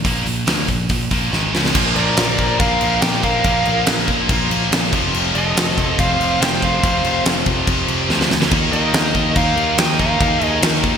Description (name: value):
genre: hard rock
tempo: 142 BPM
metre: 4/4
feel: straight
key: unclear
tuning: A4 = 441 Hz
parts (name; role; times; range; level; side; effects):
- heavy high-gain guitar; riff; 0.0-11.0 s; F2 to Eb4; -23 LUFS; right 11 dB; distortion
- scooped high-gain guitar; riff; 0.0-11.0 s; F2 to Eb4; -24 LUFS; left 10 dB; distortion
- picked electric bass; bass; 0.0-11.0 s; F1 to Eb2; -23 LUFS; equal; none
- huge arena drum kit; drums; 0.0-10.9 s; crash cymbal, hi-hat, kick drum, snare drum; -19 LUFS; equal; gated reverb
- tight distorted guitar; riff; 1.7-11.0 s; F2 to Eb4; -25 LUFS; left 2 dB; distortion
- bluesy overdriven lead guitar; melody; 2.0-10.6 s; D5 to G5; -22 LUFS; right 1 dB; distortion, ping-pong delay
- high-gain lead guitar; second line; 2.0-10.6 s; A4 to Eb5; -25 LUFS; equal; distortion, ping-pong delay
room: moderate lush hall reverb, RT60 1.6 s, studio ambience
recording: bright 1980s-style digital production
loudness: -14 LUFS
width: side -7 dB against mid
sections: 0.0-1.7 A section; 1.7-11.0 B section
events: drum fill 1.3-1.7, 8.1-8.5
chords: 0.0 Bb; 1.3 Ab5; 1.5 Db5; 1.7 Bb; 4.9 F5; 8.5 Eb5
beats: | 0.05 0.47 0.90 1.32 | 1.75 2.17 2.60 3.02 | 3.44 3.87 4.29 4.72 | 5.14 5.56 5.99 6.41 | 6.83 7.25 7.68 8.10 | 8.52 8.94 9.37 9.79 | 10.21 10.63